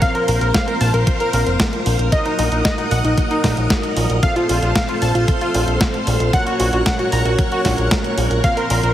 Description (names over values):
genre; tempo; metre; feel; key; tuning
italo disco; 114 BPM; 4/4; straight; unclear; A4 = 439 Hz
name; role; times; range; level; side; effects
wide unison lead; melody; 0.0-8.9 s; Eb4 to Bb5; -22 LUFS; equal; digital delay
string machine, full ensemble; sustained chords; 0.0-8.9 s; A4 to Eb6; -24 LUFS; left 1 dB; ensemble chorus
analog synth brass; stabs; 0.0-8.9 s; Bb2 to Bb4; -24 LUFS; right 2 dB; chorus
clean 12-bit digital drum machine; drums; 0.0-8.9 s; hi-hat, snare drum; -23 LUFS; equal; none
electronic kick drum; drums; 0.0-8.5 s; none; -20 LUFS; equal; none
fat analog bass; bass; 0.3-8.9 s; F1 to Bb1; -19 LUFS; equal; none
room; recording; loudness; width
light reverb; heavily compressed radio sound, multiband compression; -15 LUFS; side -12 dB against mid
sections
0.0-8.9 A section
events
none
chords
0.0 Bbsus2; 2.1 Ebm/Bb; 4.2 F/Bb; 6.3 Gb/Bb